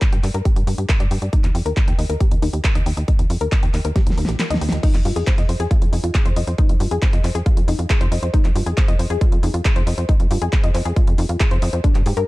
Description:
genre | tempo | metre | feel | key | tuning
uplifting trance | 137 BPM | 4/4 | straight | F dorian | A4 = 440 Hz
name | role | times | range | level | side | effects
analog pluck | arpeggios | 0.0-12.2 s | D4 to G5 | -27 LUFS | left 4 dB | chorus, sidechain pumping, digital delay
big-room dance drum kit | drums | 0.0-12.3 s | crash cymbal, handclaps, hi-hat, snare drum | -27 LUFS | equal | none
electronic kick drum | drums | 0.0-11.9 s | none | -16 LUFS | equal | none
tight sequencer bass | bass | 0.1-12.2 s | Bb1 to Ab2 | -22 LUFS | equal | tube saturation, sidechain pumping
room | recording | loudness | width
digital ambience | dark, warm production | -16 LUFS | side -20 dB against mid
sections
0.0-12.3 A section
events
filter sweep on synth pluck 0.0-12.3; drum fill 4.0-4.8; kick drops out 4.4-4.8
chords
0.0 G5; 1.3 Eb; 4.8 F7(no3)

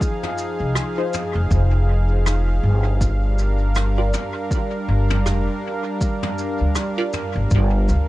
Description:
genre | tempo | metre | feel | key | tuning
ambient dub | 80 BPM | 4/4 | swing 58% on 16ths | unclear | A4 = 439 Hz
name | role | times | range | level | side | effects
warm analog pad | sustained chords | 0.0-8.1 s | F3 to F5 | -25 LUFS | equal | chorus
electronic kick drum | drums | 0.0-7.7 s | none | -22 LUFS | equal | none
soft brush drum kit | drums | 0.0-8.1 s | rim click, shaker, toms | -30 LUFS | equal | dub echo
upright bass | bass | 0.6-8.1 s | F1 to D2 | -18 LUFS | equal | tube saturation
filtered dub chord stab | stabs | 1.0-7.1 s | Eb4 to D5 | -30 LUFS | equal | phaser, lush chorus, dub echo
room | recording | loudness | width
small room ambience | nothing above 10.4 kHz | -18 LUFS | side -17 dB against mid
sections
0.0-8.1 A section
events
none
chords
0.0 Fm7; 3.0 Gm7

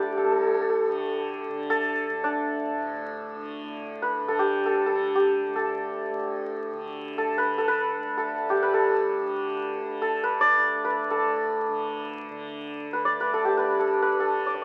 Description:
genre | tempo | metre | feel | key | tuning
indian classical, Hindustani | free time | none | none | unclear | A4 = 440 Hz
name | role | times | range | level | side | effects
santur | melody | 0.0-14.6 s | D4 to D5 | -26 LUFS | equal | none
tanpura | drone | 0.0-14.6 s | D2 to D3 | -38 LUFS | equal | none
room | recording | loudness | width
moderate studio reverb, RT60 0.9 s | very old 78 rpm record, vinyl crackle | -26 LUFS | mono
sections
0.0-3.6 A section; 3.6-14.6 A section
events
none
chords
none

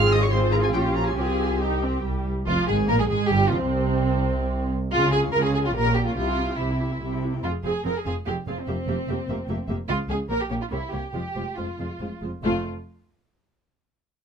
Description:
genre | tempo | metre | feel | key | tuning
quick classical-period movement for string orchestra | 136-150 BPM | 3/4 | rubato | F minor | A4 = 440 Hz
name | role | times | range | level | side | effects
muted chamber violin section | melody | 0.0-12.7 s | C4 to F6 | -34 LUFS | equal | none
muted studio viola section | accompaniment | 0.0-12.7 s | C3 to Bb4 | -28 LUFS | right 1 dB | none
muted chamber double bass section | bass | 0.0-12.7 s | F1 to Db2 | -27 LUFS | right 2 dB | none
muted studio cello section | bass | 0.0-12.7 s | C2 to G4 | -29 LUFS | equal | none
muted chamber violin section | second line | 0.1-12.7 s | C4 to Eb5 | -27 LUFS | right 1 dB | none
room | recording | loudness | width
light reverb | close, detailed microphones | -22 LUFS | side -7 dB against mid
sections
0.0-2.5 A section; 2.5-12.4 B section; 12.4-13.7 C section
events
none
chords
0.0 Fm/Ab; 0.7 Gdim/Bb; 1.2 Csus4; 2.0 C5; 2.5 Fm; 3.7 N.C.; 4.9 Db; 5.7 Gdim/Bb; 6.2 C; 7.4 Fm; 8.7 C7/F; 9.9 Db5; 10.3 Gm/Bb; 10.7 C7; 11.1 Fm; 12.4 F

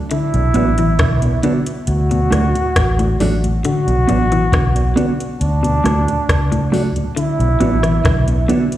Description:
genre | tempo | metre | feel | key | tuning
roots reggae | 68 BPM | 4/4 | straight | B minor | A4 = 438 Hz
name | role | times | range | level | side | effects
bright trombone | second line | 0.1-8.5 s | D4 to F#4 | -21 LUFS | right 1 dB | tape echo, slapback echo
semi-hollow electric guitar | arpeggios | 0.1-8.7 s | F#2 to F#3 | -22 LUFS | left 4 dB | slapback echo
soft vintage rhythm box | drums | 0.1-8.8 s | hi-hat, kick drum, rim click | -20 LUFS | equal | slapback echo
mellow tonewheel organ | accompaniment | 0.3-8.6 s | D2 to D4 | -25 LUFS | left 1 dB | chorus vibrato, slow rotary speaker, tape echo, slapback echo
vintage muted fingered electric bass | bass | 0.3-8.4 s | A1 to D2 | -17 LUFS | equal | none
mellow electric guitar | accompaniment | 0.5-8.6 s | A3 to F#4 | -22 LUFS | right 4 dB | tape echo, slapback echo
room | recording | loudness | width
light reverb | live gig heard through the venue's PA, recital hall reverb | -13 LUFS | side -13 dB against mid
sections
0.0-8.8 A section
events
none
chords
0.1 Bm; 1.9 D; 3.6 Bm; 5.4 D; 7.2 Bm

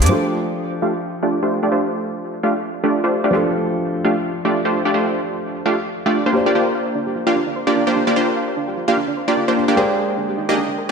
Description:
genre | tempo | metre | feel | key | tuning
future bass | 149 BPM | 4/4 | swing 56% on 16ths, half-time | F major | A4 = 436 Hz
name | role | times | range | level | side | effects
soft round pluck | arpeggios | 0.0-0.1, 6.5-10.9 s | D4 to F5 | -26 LUFS | right 4 dB | chorus, dub echo
supersaw stab | riff | 0.0-10.9 s | A3 to F5 | -18 LUFS | equal | low-pass filter, dub echo
felt-muted upright piano | accompaniment | 0.1-10.9 s | F3 to G5 | -25 LUFS | left 1 dB | dub echo
room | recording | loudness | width
wet lush hall reverb, RT60 2.0 s, digital ambience | none | -17 LUFS | side -5 dB against mid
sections
0.1-10.9 A section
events
filter sweep on supersaw synth 0.1-10.9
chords
0.1 F69; 6.3 Bb69; 9.8 Abmaj9#11

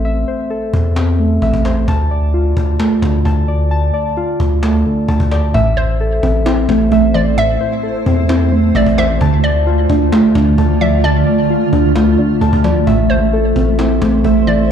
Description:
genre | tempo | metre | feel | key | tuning
hip hop, trap | 131 BPM | 4/4 | half-time | A minor | A4 = 440 Hz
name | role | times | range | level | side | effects
muted felt-like synth keys | arpeggios | 0.0-14.7 s | D3 to A5 | -16 LUFS | left 2 dB | chorus, tape echo
long sustained 808-style bass | bass | 0.0-14.7 s | A1 to E2 | -15 LUFS | equal | none
cajon | drums | 0.0-14.7 s | none | -26 LUFS | equal | none
soft round pluck | accompaniment | 5.5-14.7 s | A2 to F4 | -18 LUFS | right 4 dB | chorus
granular cloud pad | sustained chords | 6.7-14.7 s | D3 to C5 | -19 LUFS | right 3 dB | built-in reverb
hollow square pluck | second line | 5.8-14.7 s | C5 to E5 | -21 LUFS | right 3 dB | chorus, tape echo
room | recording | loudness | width
little or no reverb | played on a big sound system in a bare room, large studio reverb | -11 LUFS | side -8 dB against mid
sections
0.0-5.5 A section; 5.5-14.7 B section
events
none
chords
0.0 Am; 1.9 Dm; 5.5 Am; 9.2 Dm; 12.9 Am

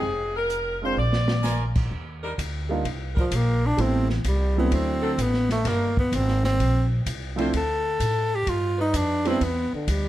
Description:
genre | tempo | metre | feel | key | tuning
jazz, big band swing | 128 BPM | 4/4 | swing 68% on 8ths | unclear | A4 = 443 Hz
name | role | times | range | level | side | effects
clear saxophone section | melody | 0.0-1.7 s | Ab4 to D5 | -26 LUFS | left 1 dB | none
upright bass | bass | 0.0-10.1 s | F1 to A2 | -25 LUFS | equal | none
open jazz drum kit | drums | 0.5-10.0 s | crash cymbal, hi-hat, kick drum, ride cymbal, snare drum | -31 LUFS | equal | none
warm baby grand piano | accompaniment | 0.8-9.4 s | F3 to F4 | -27 LUFS | right 3 dB | none
brilliant trumpet section | stabs | 1.4-1.7 s | F4 to Ab5 | -32 LUFS | right 3 dB | none
clear saxophone section | sustained chords | 2.2-9.4 s | F#3 to C5 | -34 LUFS | left 1 dB | none
warm tenor saxophone | melody | 3.2-10.1 s | D3 to A4 | -25 LUFS | equal | none
room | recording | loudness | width
light reverb | none | -21 LUFS | side -14 dB against mid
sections
0.0-1.9 A section; 1.9-10.1 B section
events
drum fill 1.0-1.4; tenor saxophone solo 1.9-10.1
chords
0.0 Fm; 1.0 Bb7; 1.9 Ebmaj7; 3.8 Am7; 4.7 D7; 5.7 Gm7; 7.5 D5; 8.5 G7; 9.4 Cmaj7 (rootless)

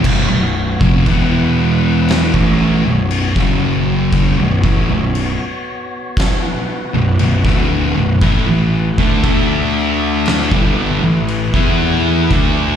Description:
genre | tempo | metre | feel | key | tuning
stoner and doom metal | 59 BPM | 4/4 | straight | B minor | A4 = 440 Hz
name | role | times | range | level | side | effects
tonewheel organ | sustained chords | 0.0-12.8 s | F#3 to F#5 | -27 LUFS | equal | overdrive, fast rotary speaker
thick fuzz guitar | riff | 0.0-12.8 s | B1 to E4 | -18 LUFS | left 8 dB | distortion
thick fuzz guitar | riff | 0.0-12.8 s | B1 to E4 | -19 LUFS | right 10 dB | distortion
fuzz picked electric bass | bass | 0.0-12.8 s | B0 to E2 | -18 LUFS | equal | overdrive
oversized low-tuned drum kit | drums | 0.0-12.5 s | crash cymbal, kick drum, snare drum | -19 LUFS | equal | none
distorted electric guitar | riff | 8.2-12.8 s | G2 to E4 | -20 LUFS | right 1 dB | distortion
room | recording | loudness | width
studio reverb | live gig heard through the venue's PA, club reverb | -12 LUFS | side -8 dB against mid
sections
0.0-12.8 A section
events
none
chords
0.0 B5; 1.1 E5; 2.3 B5; 3.4 F#5; 4.4 Bm; 8.2 A5; 9.2 D5; 10.5 A5

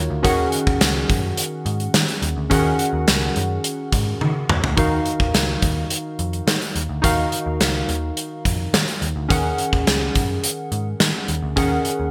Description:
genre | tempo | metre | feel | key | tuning
1980s-style pop | 106 BPM | 4/4 | straight | Eb minor | A4 = 440 Hz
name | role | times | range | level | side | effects
warm analog keys | accompaniment | 0.0-12.1 s | Eb3 to Gb5 | -25 LUFS | equal | chorus
vintage muted picked electric bass | bass | 0.0-12.1 s | Db2 to Eb3 | -27 LUFS | equal | none
gated 80s drum kit | drums | 0.2-12.0 s | hi-hat, kick drum, snare drum, tambourine, toms | -22 LUFS | equal | gated reverb
room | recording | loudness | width
moderate plate reverb, RT60 2.0 s | bright 1980s-style digital production | -20 LUFS | mono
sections
0.0-4.8 A section; 4.8-12.1 B section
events
drum fill 4.2-4.8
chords
0.2 Gbadd9; 4.8 Ebmadd9; 9.3 Gbadd9

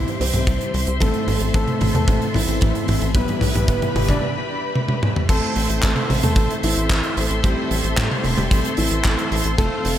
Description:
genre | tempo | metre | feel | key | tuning
italo disco | 112 BPM | 4/4 | straight | A minor | A4 = 438 Hz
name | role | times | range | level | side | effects
warm grand piano | melody | 0.0-10.0 s | C3 to D5 | -26 LUFS | right 2 dB | digital delay
rich symphonic string section | sustained chords | 0.0-10.0 s | G4 to C6 | -28 LUFS | left 2 dB | low-pass filter
analog synth brass | stabs | 0.0-10.0 s | G3 to C5 | -27 LUFS | left 2 dB | chorus
tight sequencer bass | bass | 0.0-10.0 s | E1 to A2 | -23 LUFS | equal | none
gated 80s drum kit | drums | 0.1-10.0 s | crash cymbal, handclaps, hi-hat, toms | -23 LUFS | right 1 dB | none
kick drum | drums | 0.5-9.7 s | none | -22 LUFS | equal | none
room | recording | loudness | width
light reverb, small room ambience | none | -17 LUFS | side -11 dB against mid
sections
0.0-5.3 A section; 5.3-10.0 B section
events
drum fill 0.0-4.2, 4.8-5.3; filter sweep on analog polysynth 0.0-5.3; break 4.2-5.3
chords
0.0 C; 1.0 Am; 3.2 Em; 5.3 Am

